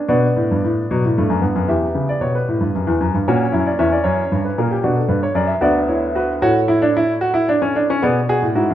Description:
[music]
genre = classical, baroque-style 4-part fugue for grand piano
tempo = 76 BPM (dotted quarters)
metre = 12/8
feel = straight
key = B minor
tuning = A4 = 440 Hz
[part]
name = warm baby grand piano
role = solo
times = 0.0-8.7 s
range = D2 to E5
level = -15 LUFS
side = equal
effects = none
[sound]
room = moderate recital hall reverb, RT60 1.7 s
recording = none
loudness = -15 LUFS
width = side -11 dB against mid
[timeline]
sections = 0.1-8.7 A section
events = none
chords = 0.1 Bm; 1.7 C#dim/E; 3.3 F#7; 4.8 Bm; 6.4 F#m/A; 8.0 G#dim

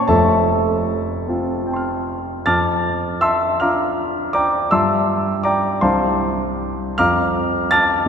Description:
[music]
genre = classical, impressionist solo piano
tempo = 52 BPM (dotted quarters)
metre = 6/8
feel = uneven beats, rubato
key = F major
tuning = A4 = 440 Hz
[part]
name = warm grand piano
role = solo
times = 0.0-8.1 s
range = F1 to A6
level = -16 LUFS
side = equal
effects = none
[sound]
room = wet church reverb, RT60 3.5 s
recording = minimal, uncompressed stereo recording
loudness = -16 LUFS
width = side -7 dB against mid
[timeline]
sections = 0.0-2.5 A section; 2.5-8.1 B section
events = none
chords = 0.1 Fadd9; 2.5 F69; 4.7 Gm7; 5.8 Cadd9; 7.0 F

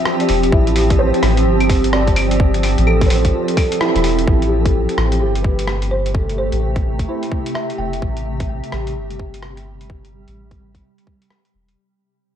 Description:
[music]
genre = future garage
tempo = 128 BPM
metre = 4/4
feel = swing 62% on 16ths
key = A minor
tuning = A4 = 441 Hz
[part]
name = folk marimba with soft mallets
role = melody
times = 0.0-0.2, 5.9-8.0 s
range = C5 to G5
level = -28 LUFS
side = left 1 dB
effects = ping-pong delay
[part]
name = felt-muted upright piano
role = accompaniment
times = 0.0-8.0 s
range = D4 to D5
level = -22 LUFS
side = right 3 dB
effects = sidechain pumping, tape echo
[part]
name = granular cloud pad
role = sustained chords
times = 0.0-11.7 s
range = C3 to G4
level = -20 LUFS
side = right 1 dB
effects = built-in reverb, wide subtle chorus, sidechain pumping
[part]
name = lo-fi sampler-style drum kit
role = drums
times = 0.1-11.8 s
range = claves, hi-hat, rim click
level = -24 LUFS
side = left 1 dB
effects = none
[part]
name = soft dub sub bass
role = bass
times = 0.3-11.8 s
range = E1 to A1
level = -19 LUFS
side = equal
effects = none
[part]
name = electronic kick drum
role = drums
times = 0.5-11.2 s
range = none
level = -18 LUFS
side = equal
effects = overdrive
[sound]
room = moderate lush hall reverb, RT60 1.6 s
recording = dreamy mix soaked in reverb, cassette tape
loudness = -14 LUFS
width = side -9 dB against mid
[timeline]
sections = 0.0-4.3 A section; 4.3-11.8 B section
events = band accent 3.8; fade-out 4.3-11.8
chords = 0.0 Fsus2; 4.3 Am7

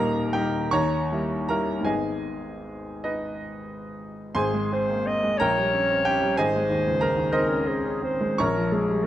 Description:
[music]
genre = classical, romantic duo for clarinet and grand piano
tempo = 42-64 BPM (dotted quarters)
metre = 6/8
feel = rubato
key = G# minor, Ab major from 4.3 s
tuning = A4 = 440 Hz
[part]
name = clear grand piano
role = accompaniment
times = 0.0-9.1 s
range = D#1 to C#6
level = -24 LUFS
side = equal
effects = none
[part]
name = mellow clarinet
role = melody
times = 4.4-9.1 s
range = Ab4 to Eb5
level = -25 LUFS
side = left 1 dB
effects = none
[sound]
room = light reverb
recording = close, detailed microphones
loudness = -22 LUFS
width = side -12 dB against mid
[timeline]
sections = 0.0-4.3 A section; 4.3-9.1 B section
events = none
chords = 0.0 D#; 0.7 D#7b9; 1.9 G#m; 4.3 Ab; 5.4 Gdim/Bb; 6.4 Ab; 8.4 Bbm7

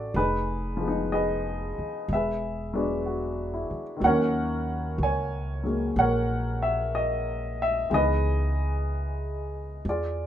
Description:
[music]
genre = jazz ballad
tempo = 62 BPM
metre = 4/4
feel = swing 68% on 8ths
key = unclear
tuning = A4 = 440 Hz
[part]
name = warm baby grand piano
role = accompaniment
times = 0.0-10.3 s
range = C#3 to G#5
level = -26 LUFS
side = equal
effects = none
[part]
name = upright bass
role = bass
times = 0.0-10.3 s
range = E1 to E2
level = -30 LUFS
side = equal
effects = none
[sound]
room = moderate club reverb, RT60 0.5 s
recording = minimal, uncompressed stereo recording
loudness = -25 LUFS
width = side -10 dB against mid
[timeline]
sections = 0.0-10.3 A section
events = none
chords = 0.2 Fm7b5; 2.1 E9; 4.0 D#m7; 7.9 C#m7

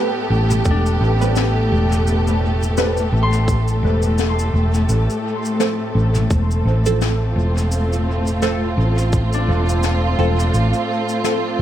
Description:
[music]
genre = ambient dub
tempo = 85 BPM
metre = 4/4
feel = swing 57% on 16ths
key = unclear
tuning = A4 = 440 Hz
[part]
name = rich studio string section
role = sustained chords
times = 0.0-11.6 s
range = A2 to A4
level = -21 LUFS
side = equal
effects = none
[part]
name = filtered dub chord stab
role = stabs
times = 0.0-11.4 s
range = F3 to B4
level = -26 LUFS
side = right 2 dB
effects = phaser, wide subtle chorus, dub echo
[part]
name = hollow-body short-scale fingered electric bass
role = bass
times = 0.3-11.6 s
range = E1 to A1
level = -17 LUFS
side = equal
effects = none
[part]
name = jazz brush drum kit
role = drums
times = 0.5-11.4 s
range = cabasa, snare drum, toms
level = -27 LUFS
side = left 4 dB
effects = dub echo
[part]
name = Celtic harp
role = arpeggios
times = 0.7-11.6 s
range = D4 to C6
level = -30 LUFS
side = left 3 dB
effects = dub echo
[part]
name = electronic kick drum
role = drums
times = 0.7-9.3 s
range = none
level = -20 LUFS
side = equal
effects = none
[sound]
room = light reverb, small room ambience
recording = echo-heavy mix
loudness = -16 LUFS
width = side -11 dB against mid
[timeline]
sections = 0.0-11.6 A section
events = none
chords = 0.0 Am9; 4.9 F

